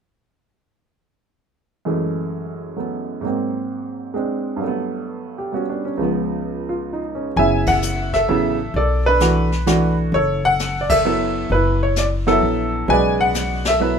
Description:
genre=jazz piano trio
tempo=130 BPM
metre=3/4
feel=swing 66% on 8ths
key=F# minor from 7.4 s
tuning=A4 = 440 Hz
part: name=clear grand piano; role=melody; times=1.9-14.0 s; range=C#2 to G#5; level=-18 LUFS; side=right 1 dB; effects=none
part: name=upright bass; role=bass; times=7.4-14.0 s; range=F#1 to B1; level=-22 LUFS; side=left 1 dB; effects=none
part: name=jazz brush drum kit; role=drums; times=7.4-14.0 s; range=brushed snare drum, hi-hat, kick drum, ride cymbal, snare drum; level=-27 LUFS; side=left 2 dB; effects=none
room=moderate studio reverb, RT60 0.6 s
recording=minimal, uncompressed stereo recording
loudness=-17 LUFS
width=side -6 dB against mid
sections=1.8-7.4 A section; 7.4-14.0 B section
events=band accent 7.6, 10.8, 13.6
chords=1.8 F#m9; 3.2 G#9; 4.6 Gmaj9; 6.0 C#7; 7.4 F#m7; 8.7 Bm7; 10.1 F#m7; 12.9 Bm7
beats=| 1.85 2.31 2.77 | 3.23 3.69 4.15 | 4.61 5.07 5.53 | 5.99 6.45 6.91 | 7.37 7.83 8.29 | 8.75 9.21 9.67 | 10.13 10.59 11.05 | 11.51 11.97 12.43 | 12.89 13.35 13.81

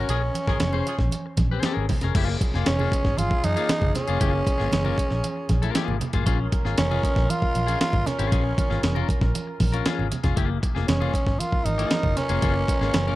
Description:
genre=funk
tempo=117 BPM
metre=4/4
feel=straight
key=unclear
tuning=A4 = 440 Hz
part: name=growling tenor saxophone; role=melody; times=0.0-13.2 s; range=Db4 to F4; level=-27 LUFS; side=right 1 dB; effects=none
part: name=clean electric guitar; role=accompaniment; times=0.0-13.2 s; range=Bb3 to C5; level=-31 LUFS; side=left 8 dB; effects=spring reverb
part: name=vintage muted fingered electric bass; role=bass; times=0.0-13.1 s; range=F1 to Gb2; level=-26 LUFS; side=equal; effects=none
part: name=mellow horn section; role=second line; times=0.1-13.2 s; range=Db4 to Bb4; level=-34 LUFS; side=right 4 dB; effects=none
part: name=breakbeat sampler-style drum kit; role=drums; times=0.1-13.1 s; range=crash cymbal, hi-hat, kick drum, snare drum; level=-25 LUFS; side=equal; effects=none
part: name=congas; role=percussion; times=0.1-13.2 s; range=none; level=-31 LUFS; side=right 4 dB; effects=none
room=little or no reverb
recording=dark, warm production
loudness=-21 LUFS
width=side -16 dB against mid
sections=0.0-2.2 A section; 2.2-13.2 B section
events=band accent 0.1-2.2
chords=0.1 Bbm7; 2.2 Gbmaj9; 6.3 Bbm7; 10.4 Gbmaj9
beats=| 0.09 0.60 1.12 1.64 | 2.15 2.67 3.18 3.69 | 4.21 4.72 5.24 5.75 | 6.26 6.78 7.29 7.80 | 8.32 8.83 9.35 9.86 | 10.37 10.88 11.40 11.91 | 12.43 12.94

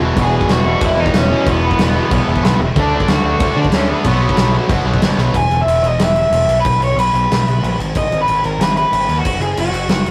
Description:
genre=punk rock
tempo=185 BPM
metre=4/4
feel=straight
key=unclear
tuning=A4 = 438 Hz
part: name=distorted electric guitar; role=riff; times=0.0-5.3 s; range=E2 to D4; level=-21 LUFS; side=equal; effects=distortion
part: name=heavy high-gain guitar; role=riff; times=0.0-5.3 s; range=E2 to D4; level=-28 LUFS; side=equal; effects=none
part: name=growling picked electric bass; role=bass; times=0.0-10.1 s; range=E1 to D3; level=-21 LUFS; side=equal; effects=overdrive
part: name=overdriven electric guitar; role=melody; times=0.2-10.1 s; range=B3 to G#5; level=-20 LUFS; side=equal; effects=none
part: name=big rock drum kit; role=drums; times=0.2-10.1 s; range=crash cymbal, kick drum, snare drum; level=-20 LUFS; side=equal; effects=none
room=light reverb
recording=rough rehearsal-room recording, warm saturation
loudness=-15 LUFS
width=mono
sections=0.0-5.4 A section; 5.4-10.1 B section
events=drum fill 5.2; half time 5.4-10.1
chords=0.0 E5; 2.8 D; 4.1 B5; 5.4 E; 6.5 N.C.; 7.8 G#m; 9.3 F#5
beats=| 0.16 0.49 0.81 1.13 | 1.46 1.78 2.11 2.43 | 2.75 3.08 3.40 3.73 | 4.05 4.38 4.70 5.03 | 5.35 5.68 6.00 6.33 | 6.65 6.98 7.30 7.63 | 7.95 8.28 8.60 8.93 | 9.25 9.58 9.90

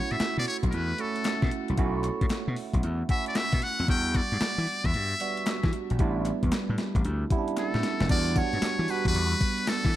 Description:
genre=R&B, new jack swing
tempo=114 BPM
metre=4/4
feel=swing 65% on 16ths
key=E dorian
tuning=A4 = 440 Hz
part: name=trumpet with metal mute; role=melody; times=0.0-10.0 s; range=A4 to G5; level=-30 LUFS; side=left 2 dB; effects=ping-pong delay
part: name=bell-like tine electric piano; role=accompaniment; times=0.0-10.0 s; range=G3 to F#4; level=-32 LUFS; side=right 5 dB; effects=phaser
part: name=gritty slap bass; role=bass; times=0.1-9.9 s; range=F1 to E3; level=-29 LUFS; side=left 1 dB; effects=overdrive
part: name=crisp 8-bit digital drum machine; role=drums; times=0.1-10.0 s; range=crash cymbal, handclaps, hi-hat, kick drum, snare drum, tambourine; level=-28 LUFS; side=left 1 dB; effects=overdrive
part: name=group handclap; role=percussion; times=0.2-7.7 s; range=none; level=-47 LUFS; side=left 4 dB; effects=none
room=light reverb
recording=dark, warm production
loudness=-25 LUFS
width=side -13 dB against mid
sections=0.0-8.1 A section; 8.1-10.0 B section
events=drum fill 7.6-8.1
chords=0.0 B9sus4; 3.9 Em9; 6.0 A7sus4; 8.1 Em9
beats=0.20 0.73 1.25 | 1.78 2.31 2.83 3.36 | 3.88 4.41 4.94 5.46 | 5.99 6.52 7.04 7.57 | 8.10 8.62 9.15 9.67

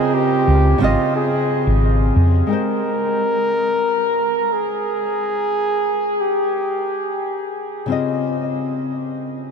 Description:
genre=sunset chillout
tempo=89 BPM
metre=4/4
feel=straight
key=Ab major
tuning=A4 = 440 Hz
part: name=trumpet with bucket mute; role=melody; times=0.0-7.6 s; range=F4 to Bb4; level=-20 LUFS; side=equal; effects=diffuse ambient delay
part: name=nylon-string guitar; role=accompaniment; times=0.0-9.5 s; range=Db3 to G5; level=-21 LUFS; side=moving between left 5 dB and right 4 dB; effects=auto-pan, diffuse ambient delay
part: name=hollow-body short-scale fingered electric bass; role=bass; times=0.5-2.4 s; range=Ab1 to F2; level=-15 LUFS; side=equal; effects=none
room=wet huge ambient reverb, RT60 8.0 s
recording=dreamy mix soaked in reverb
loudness=-17 LUFS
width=side -6 dB against mid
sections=0.0-2.5 A section; 2.5-9.5 B section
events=none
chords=0.0 Dbmaj9; 2.5 Abmaj9; 7.9 Dbmaj9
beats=0.48 1.15 1.83 | 2.50 3.17 3.85 4.52 | 5.20 5.87 6.54 7.22 | 7.89 8.57 9.24

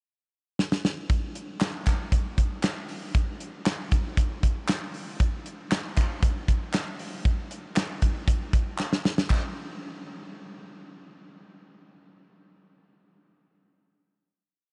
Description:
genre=funk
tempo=117 BPM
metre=4/4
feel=straight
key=none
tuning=none
part: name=damped 70s drum kit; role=drums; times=0.6-9.4 s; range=crash cymbal, handclaps, hi-hat, kick drum, snare drum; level=-28 LUFS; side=equal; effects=none
part: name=group handclap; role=percussion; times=1.6-9.5 s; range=none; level=-42 LUFS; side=equal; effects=none
room=moderate huge ambient reverb, RT60 7.8 s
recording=dreamy mix soaked in reverb, nothing above 10.6 kHz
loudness=-28 LUFS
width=mono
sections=0.0-1.1 pickup bar; 1.1-9.3 verse; 9.3-11.4 final hit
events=drum fill 0.6-1.1, 8.8-9.3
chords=none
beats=0.07 0.58 | 1.10 1.61 2.12 2.64 | 3.15 3.66 4.17 4.69 | 5.20 5.71 6.23 6.74 | 7.25 7.76 8.28 8.79 | 9.30

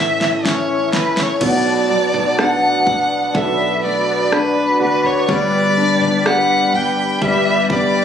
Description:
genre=pop ballad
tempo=62 BPM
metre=4/4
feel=straight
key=unclear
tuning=A4 = 440 Hz
part: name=warm violin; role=melody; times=0.0-8.0 s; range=B4 to G5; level=-17 LUFS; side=equal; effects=ping-pong delay
part: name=clear grand piano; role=accompaniment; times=0.0-8.0 s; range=A2 to A4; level=-20 LUFS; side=left 2 dB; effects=none
part: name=warm analog pad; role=sustained chords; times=0.0-8.0 s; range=A2 to B5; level=-22 LUFS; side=right 1 dB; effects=chorus
part: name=pop drum kit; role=drums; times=0.2-7.9 s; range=crash cymbal, kick drum, rim click, snare drum, toms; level=-23 LUFS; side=right 1 dB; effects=none
part: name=fingerpicked steel-string acoustic guitar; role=arpeggios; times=1.4-8.0 s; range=G2 to G4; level=-25 LUFS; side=left 2 dB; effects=ping-pong delay
part: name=woody fretless electric bass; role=bass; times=1.4-8.0 s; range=G1 to D2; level=-28 LUFS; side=right 2 dB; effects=none
room=light reverb, studio reverb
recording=recorded on a phone in the room, compression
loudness=-14 LUFS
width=side -8 dB against mid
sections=0.0-1.4 A section; 1.4-8.0 B section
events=drum fill 0.0-1.4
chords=0.0 A; 1.4 Bm7; 5.3 G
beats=0.44 | 1.41 2.38 3.35 4.31 | 5.28 6.25 7.22

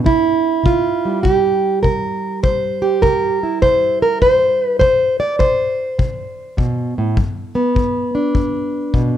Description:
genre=acoustic country blues, solo or duo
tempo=101 BPM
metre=4/4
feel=swing 67% on 8ths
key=unclear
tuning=A4 = 435 Hz
part: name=fingerpicked plugged-in steel-string acoustic guitar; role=melody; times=0.0-9.2 s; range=G2 to D5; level=-15 LUFS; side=right 1 dB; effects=none
part: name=kick drum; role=drums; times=0.1-9.1 s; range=none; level=-20 LUFS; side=left 2 dB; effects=none
room=light reverb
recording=dark, warm production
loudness=-14 LUFS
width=side -10 dB against mid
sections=0.0-9.2 A section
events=none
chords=0.1 C; 7.2 G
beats=| 0.06 0.66 1.25 1.84 | 2.44 3.03 3.62 4.22 | 4.81 5.40 5.99 6.58 | 7.17 7.76 8.35 8.94

